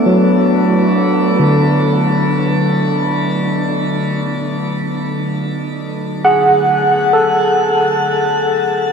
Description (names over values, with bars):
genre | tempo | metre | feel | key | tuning
ambient | 68 BPM | 4/4 | straight | unclear | A4 = 440 Hz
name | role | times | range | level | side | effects
overdriven tine electric piano | solo | 0.0-8.9 s | D3 to F#5 | -12 LUFS | equal | analog chorus, ping-pong delay
room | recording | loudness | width
wet shimmer reverb, RT60 8.2 s | none | -12 LUFS | side -6 dB against mid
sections
0.0-8.9 A section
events
none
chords
0.0 Esus2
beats
| 0.07 0.95 1.83 2.71 | 3.60 4.48 5.36 6.24 | 7.12 8.01 8.89